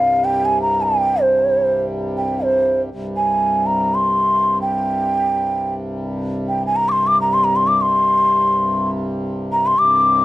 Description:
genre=indian classical, Hindustani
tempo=free time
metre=none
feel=none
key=unclear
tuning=A4 = 442 Hz
part: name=mellow hollow bansuri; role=melody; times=0.0-10.2 s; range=C5 to D6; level=-15 LUFS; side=equal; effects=none
part: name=hand-pumped harmonium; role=drone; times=0.0-10.2 s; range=C2 to G2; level=-24 LUFS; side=equal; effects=none
room=light reverb, small room ambience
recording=dry, close 1970s-style studio recording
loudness=-15 LUFS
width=side -16 dB against mid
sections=0.0-2.9 A section; 2.9-10.2 A section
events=none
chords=none

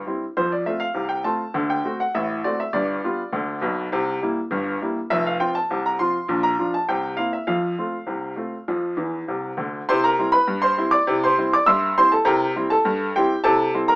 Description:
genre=ragtime piano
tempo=101 BPM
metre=2/4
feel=straight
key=F major, C major from 9.9 s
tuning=A4 = 440 Hz
part: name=clear upright piano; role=solo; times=0.1-14.0 s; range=F1 to E6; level=-19 LUFS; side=equal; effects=none
room=moderate studio ambience, RT60 0.5 s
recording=small speaker sound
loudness=-19 LUFS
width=side -23 dB against mid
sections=0.4-9.9 A section; 9.9-14.0 B section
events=upright piano fill 9.0-9.9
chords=0.4 F; 1.5 D7; 2.7 G7; 3.9 C7; 5.1 F5; 6.3 Bb; 6.9 C7; 7.5 F; 9.9 C; 12.3 C7

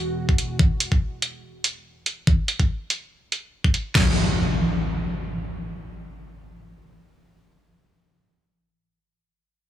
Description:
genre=heavy wobble dubstep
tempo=143 BPM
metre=4/4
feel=swing 54% on 16ths, half-time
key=unclear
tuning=A4 = 440 Hz
part: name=lush unison pad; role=sustained chords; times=0.0-0.6 s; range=E2 to F#4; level=-31 LUFS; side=right 2 dB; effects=chorus, sidechain pumping
part: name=dubstep drum kit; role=drums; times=0.3-4.1 s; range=crash cymbal, kick drum, snare drum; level=-20 LUFS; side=equal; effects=none
part: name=electronic hi-hat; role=drums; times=0.4-3.8 s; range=none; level=-25 LUFS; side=right 2 dB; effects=low-pass filter on hats
part: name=impact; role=sound effects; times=4.0-7.5 s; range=none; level=-23 LUFS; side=left 1 dB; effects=none
room=light reverb, digital ambience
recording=none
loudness=-21 LUFS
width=side -12 dB against mid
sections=0.0-4.0 A section; 4.0-7.3 B section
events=none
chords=0.0 Eadd9; 0.6 N.C.

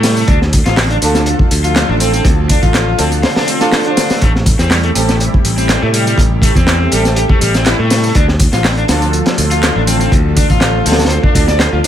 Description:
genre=breakbeat, breaks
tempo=122 BPM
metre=4/4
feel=straight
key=unclear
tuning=A4 = 445 Hz
part: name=lush unison pad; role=sustained chords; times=0.0-11.9 s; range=C3 to A4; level=-20 LUFS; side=right 1 dB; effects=chorus, phaser, vintage 12-bit sampler grit, sidechain pumping
part: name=raw garage guitar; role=riff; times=0.0-11.9 s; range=G3 to D5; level=-18 LUFS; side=left 2 dB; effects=overdrive, vintage 12-bit sampler grit, digital delay
part: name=modern bright picked electric bass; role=bass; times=0.0-11.8 s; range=A1 to A2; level=-15 LUFS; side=equal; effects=none
part: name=crunchy breakbeat drum kit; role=drums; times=0.0-11.9 s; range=hi-hat, kick drum, snare drum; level=-14 LUFS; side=equal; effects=none
part: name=punchy analog drum machine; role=drums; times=0.0-11.9 s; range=handclaps, hi-hat, tambourine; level=-20 LUFS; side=equal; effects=none
part: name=dark studio string section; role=stabs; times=1.0-11.0 s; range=C4 to C5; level=-19 LUFS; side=right 1 dB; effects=vintage 12-bit sampler grit, digital delay
room=little or no reverb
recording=none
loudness=-10 LUFS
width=side -10 dB against mid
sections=0.0-11.9 A section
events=none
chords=0.3 Dm; 4.2 Am7; 8.2 Dm

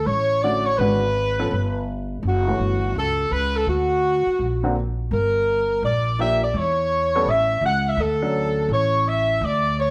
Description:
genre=jazz, big band swing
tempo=167 BPM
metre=4/4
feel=swing 65% on 8ths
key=D major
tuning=A4 = 439 Hz
part: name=dark saxophone section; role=melody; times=0.0-9.9 s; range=F#4 to F#5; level=-23 LUFS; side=equal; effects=plate reverb
part: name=upright bass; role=bass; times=0.0-9.9 s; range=F#1 to E2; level=-27 LUFS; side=equal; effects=none
part: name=warm upright piano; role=accompaniment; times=0.4-8.7 s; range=D3 to A4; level=-28 LUFS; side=equal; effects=none
room=moderate large studio reverb, RT60 0.9 s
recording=none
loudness=-21 LUFS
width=mono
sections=0.0-9.9 A section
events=none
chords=0.0 Dmaj7; 0.8 G#m7b5; 1.5 G; 2.2 F#m7; 3.7 Daug; 5.1 Gm7; 6.5 Em; 7.3 A; 8.0 Dmaj7

